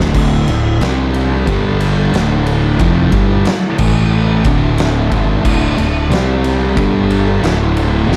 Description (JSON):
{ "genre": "stoner and doom metal", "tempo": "91 BPM", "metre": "4/4", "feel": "straight", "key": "D minor", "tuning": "A4 = 440 Hz", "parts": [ { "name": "mellow tonewheel organ", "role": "sustained chords", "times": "0.0-8.2 s", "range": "C3 to A5", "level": "-26 LUFS", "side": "equal", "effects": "none" }, { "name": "thick fuzz guitar", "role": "riff", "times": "0.0-8.2 s", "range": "D2 to C4", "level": "-19 LUFS", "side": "equal", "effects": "distortion" }, { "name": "thick fuzz guitar", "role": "riff", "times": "0.0-8.2 s", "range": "D2 to C4", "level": "-21 LUFS", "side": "equal", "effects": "distortion" }, { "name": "fuzz fingered electric bass", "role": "bass", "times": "0.0-8.2 s", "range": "D1 to C2", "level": "-20 LUFS", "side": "equal", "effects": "overdrive" }, { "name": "oversized low-tuned drum kit", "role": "drums", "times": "0.0-8.2 s", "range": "crash cymbal, kick drum, ride cymbal, snare drum", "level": "-20 LUFS", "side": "equal", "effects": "none" } ], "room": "light reverb", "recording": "dark, warm production", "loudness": "-14 LUFS", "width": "mono", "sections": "0.2-8.2 A section", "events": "drum fill 0.0", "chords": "0.2 D5; 0.8 C5; 1.5 G5; 2.1 Dm; 3.8 A5; 4.5 D5; 6.1 C5; 6.8 G5; 7.4 Dm" }